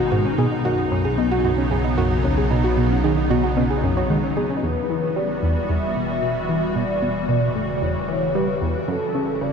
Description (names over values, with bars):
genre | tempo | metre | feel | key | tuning
ambient, sequencer-driven space music | 113 BPM | 4/4 | straight | E dorian from 4.6 s | A4 = 436 Hz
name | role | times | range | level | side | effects
evolving wavetable pad | sustained chords | 0.0-9.5 s | B2 to F#4 | -25 LUFS | equal | ensemble chorus, built-in reverb, shimmer reverb
soft round pluck | arpeggios | 0.0-4.6 s | G#3 to C#5 | -25 LUFS | equal | chorus, auto-pan, shimmer reverb, ping-pong delay
fat analog bass | bass | 0.0-9.5 s | G#1 | -28 LUFS | equal | none
tight sequenced synth | riff | 0.1-9.5 s | D#2 to G3 | -23 LUFS | equal | chorus, ping-pong delay
mellow horn-like synth lead | melody | 4.6-9.5 s | A4 to E5 | -25 LUFS | left 1 dB | lush chorus, shimmer reverb, ping-pong delay
room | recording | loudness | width
wet huge ambient reverb, RT60 7.9 s | dark, warm production | -19 LUFS | side -6 dB against mid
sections
0.0-4.6 A section; 4.6-9.5 B section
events
fade-in on analog synth bass 4.6-9.5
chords
0.4 Badd9; 4.6 Emadd9; 8.9 F#m7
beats
| 0.38 0.92 1.45 1.98 | 2.51 3.04 3.57 4.10 | 4.63 5.16 5.69 6.22 | 6.76 7.29 7.82 8.35 | 8.88 9.41